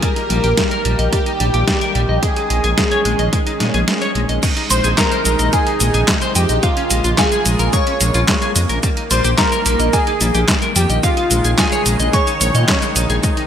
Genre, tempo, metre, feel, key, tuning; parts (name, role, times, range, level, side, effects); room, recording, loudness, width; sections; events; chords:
synthwave; 109 BPM; 4/4; straight; A4 = 439 Hz
soft supersaw; melody; 0.0-12.9 s; F4 to Db5; -21 LUFS; right 1 dB; digital delay
soft supersaw; sustained chords; 0.0-13.5 s; C3 to Ab4; -24 LUFS; right 1 dB; phaser, sidechain pumping
clean electric guitar; arpeggios; 0.0-13.4 s; G3 to Eb5; -22 LUFS; left 3 dB; analog chorus, digital delay
detuned 8-bit digital drum machine; drums; 0.0-13.5 s; crash cymbal, handclaps, hi-hat, shaker, snare drum; -19 LUFS; equal
electronic kick drum; drums; 0.0-13.3 s; -19 LUFS; equal; overdrive
dark detuned saw bass; bass; 0.3-13.2 s; Bb1 to Bb2; -17 LUFS; equal; tube saturation
soft synth bell; second line; 4.7-12.9 s; F5 to Db6; -24 LUFS; left 1 dB; chorus, phaser, vintage 12-bit sampler grit, digital delay
moderate plate reverb, RT60 1.8 s; bright 1980s-style digital production; -13 LUFS; side -9 dB against mid
0.0-4.4 A section; 4.4-13.5 B section
kick drops out 3.9-4.4
0.0 Eb/Bb; 2.2 Dbsus2/Bb; 4.4 Ab/Bb; 6.6 Bbm7; 8.8 Eb/Bb; 11.0 Dbsus2/Bb